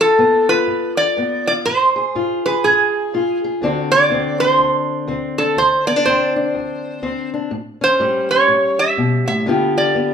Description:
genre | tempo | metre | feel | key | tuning
acoustic country blues, solo or duo | 123 BPM | 4/4 | swing 62% on 8ths | unclear | A4 = 440 Hz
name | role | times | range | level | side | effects
metal-body resonator slide guitar | melody | 0.0-10.1 s | G#4 to E5 | -15 LUFS | right 1 dB | none
fingerpicked steel-string acoustic guitar | accompaniment | 0.0-10.1 s | D2 to G#4 | -20 LUFS | left 2 dB | none
room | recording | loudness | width
moderate large studio reverb, RT60 0.8 s | band playing live in one room | -14 LUFS | side -7 dB against mid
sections
0.0-10.1 A section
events
none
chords
0.0 G7; 1.7 G#6; 3.6 D7; 7.5 A7; 9.5 G7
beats
0.19 0.68 1.17 | 1.66 2.15 2.64 3.13 | 3.62 4.11 4.59 5.08 | 5.57 6.06 6.55 7.03 | 7.52 8.01 8.50 8.98 | 9.47 9.96

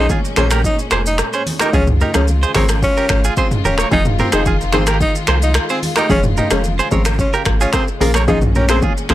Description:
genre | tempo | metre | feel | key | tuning
afrobeats | 110 BPM | 4/4 | straight | unclear | A4 = 440 Hz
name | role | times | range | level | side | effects
breathy tenor saxophone | melody | 0.0-9.1 s | Bb3 to Eb4 | -21 LUFS | equal | analog delay
hollow square pluck | accompaniment | 0.0-9.1 s | F3 to Ab4 | -21 LUFS | left 2 dB | chorus
warm studio string section | sustained chords | 0.0-9.1 s | Bb2 to F4 | -26 LUFS | left 3 dB | none
direct-recorded clean electric guitar | riff | 0.0-9.1 s | F4 to Db5 | -21 LUFS | right 5 dB | tremolo, analog delay
warm sub bass | bass | 0.0-9.1 s | Eb1 to Db2 | -18 LUFS | equal | none
deep house drum kit | drums | 0.1-9.1 s | finger snaps, hi-hat, kick drum, rim click, shaker, toms | -18 LUFS | equal | overdrive
congas | percussion | 0.1-9.1 s | none | -27 LUFS | right 1 dB | none
room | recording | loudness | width
digital ambience | dry, gritty hardware recording | -13 LUFS | side -14 dB against mid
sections
0.0-9.1 A section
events
none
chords
0.0 Db; 3.9 Fm7; 6.1 Db/F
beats
0.10 0.64 1.19 | 1.74 2.28 2.83 3.37 | 3.92 4.46 5.01 5.55 | 6.10 6.64 7.19 7.74 | 8.28 8.83

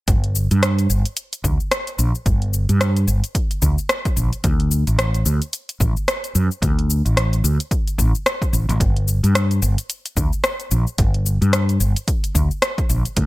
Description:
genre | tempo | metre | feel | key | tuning
organic downtempo | 110 BPM | 4/4 | swing 58% on 16ths | unclear | A4 = 441 Hz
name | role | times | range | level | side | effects
mellow fretless electric bass | bass | 0.1-13.3 s | G1 to G2 | -17 LUFS | equal | wide subtle chorus
deep house drum kit | drums | 0.1-13.3 s | cabasa, hi-hat, rim click | -22 LUFS | left 1 dB | overdrive
electronic kick drum | drums | 0.1-13.3 s | none | -21 LUFS | equal | overdrive
room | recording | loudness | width
little or no reverb | none | -17 LUFS | side -18 dB against mid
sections
0.1-13.3 A section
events
none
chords
none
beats
| 0.08 0.62 1.17 1.71 | 2.26 2.80 3.35 3.90 | 4.44 4.99 5.53 6.08 | 6.62 7.17 7.71 8.26 | 8.80 9.35 9.89 10.44 | 10.99 11.53 12.08 12.62 | 13.17

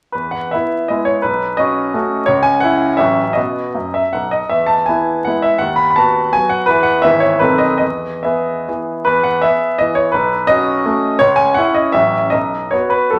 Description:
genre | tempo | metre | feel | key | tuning
classical, romantic triple-time dance for piano with dotted rhythms | 133-183 BPM | 3/4 | rubato | E major | A4 = 440 Hz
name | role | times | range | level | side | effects
bright grand piano | solo | 0.1-13.2 s | G#1 to B5 | -15 LUFS | equal | none
room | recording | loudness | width
wet large studio reverb, RT60 0.9 s | vinyl crackle | -15 LUFS | mono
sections
0.1-9.1 A section; 9.1-13.2 A section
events
none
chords
0.1 E; 1.2 B9; 2.3 C#m; 3.0 F#m/A; 3.4 B; 4.5 E; 5.6 B7/D#; 6.7 E; 7.0 E/G#; 7.4 B7b9; 7.8 E; 10.1 B9; 11.2 C#m; 11.9 F#m/A; 12.3 B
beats
| 0.15 0.53 0.90 | 1.24 1.58 1.94 | 2.28 2.63 3.00 | 3.36 3.75 4.14 | 4.51 4.89 5.27 | 5.61 5.97 6.33 | 6.67 7.03 7.41 | 7.81 8.24 8.68 | 9.07 9.44 9.80 | 10.14 10.49 10.86 | 11.20 11.57 11.94 | 12.32 12.73 13.13

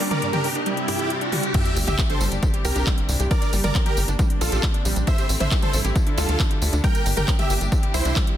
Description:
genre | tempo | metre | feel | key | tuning
uplifting trance | 136 BPM | 4/4 | straight | G dorian | A4 = 440 Hz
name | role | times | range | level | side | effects
rich chamber string section | sustained chords | 0.0-8.4 s | C3 to A4 | -32 LUFS | left 2 dB | sidechain pumping
wide unison pluck | arpeggios | 0.0-8.3 s | G2 to G4 | -30 LUFS | right 2 dB | sidechain pumping, tape echo
tight sequencer bass | bass | 0.0-8.1 s | G1 to D2 | -24 LUFS | equal | sidechain pumping, high-pass filter
techno drum kit | drums | 0.0-8.4 s | crash cymbal, handclaps, hi-hat, tambourine, toms | -28 LUFS | left 1 dB | studio reverb
riser and sub drop | sound effects | 0.0-3.3 s | none | -29 LUFS | equal | none
dense compressed supersaw | melody | 0.1-8.2 s | E4 to G5 | -27 LUFS | right 1 dB | sidechain pumping, tape echo
electronic kick drum | drums | 1.5-8.2 s | none | -21 LUFS | equal | studio reverb
room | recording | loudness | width
light reverb, digital ambience | dense, heavily limited modern master | -19 LUFS | side -11 dB against mid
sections
0.0-1.5 A section; 1.5-8.4 B section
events
build-up 0.0-1.5; riser 0.0-1.5; drop 1.5-8.4; impact 1.5-3.3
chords
0.0 Gm; 0.7 Cadd9; 1.5 Gm; 2.4 Cadd9; 3.3 Gm; 4.2 Bbadd9; 5.1 Am; 6.0 Dmadd9; 6.8 Gm; 7.7 Cadd9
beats
0.22 0.66 1.10 | 1.54 1.99 2.43 2.87 | 3.31 3.75 4.19 4.63 | 5.07 5.51 5.96 6.40 | 6.84 7.28 7.72 8.16

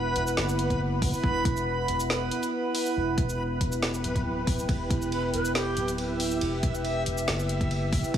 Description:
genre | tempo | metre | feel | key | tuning
deep dubstep | 139 BPM | 4/4 | half-time | E minor | A4 = 440 Hz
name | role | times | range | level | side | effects
deep dark ambient pad | sustained chords | 0.0-8.2 s | E4 to G5 | -31 LUFS | equal | chorus, built-in reverb
soft dub sub bass | bass | 0.0-8.2 s | D1 to F#1 | -31 LUFS | equal | none
backwards swelling texture | texture | 0.0-8.2 s | B4 to E5 | -32 LUFS | right 1 dB | built-in reverb
deep house drum kit | drums | 0.2-8.2 s | hi-hat, ride cymbal, shaker, snare drum | -33 LUFS | equal | none
electronic kick drum | drums | 0.7-8.2 s | none | -28 LUFS | equal | none
breathy bright ney | melody | 5.3-5.9 s | G4 to B4 | -35 LUFS | right 2 dB | dub echo
room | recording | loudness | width
moderate huge ambient reverb, RT60 6.5 s | small room ambience | -25 LUFS | side -10 dB against mid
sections
0.0-8.2 A section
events
none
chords
0.0 Emadd9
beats
0.37 0.80 | 1.24 1.67 2.10 2.53 | 2.96 3.39 3.83 4.26 | 4.69 5.12 5.55 5.98 | 6.42 6.85 7.28 7.71 | 8.14

